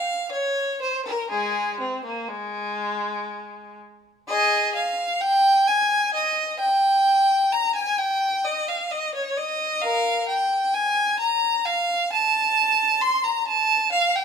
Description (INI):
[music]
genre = classical, baroque-style suite movement for unaccompanied violin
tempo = 59-67 BPM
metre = 3/4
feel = rubato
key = Ab major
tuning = A4 = 440 Hz
[part]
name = clear violin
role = solo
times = 0.0-14.2 s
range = Ab3 to C6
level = -20 LUFS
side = equal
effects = none
[sound]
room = light reverb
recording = close, detailed microphones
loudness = -20 LUFS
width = side -7 dB against mid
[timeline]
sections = 0.0-4.3 A section; 4.3-14.2 B section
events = none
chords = none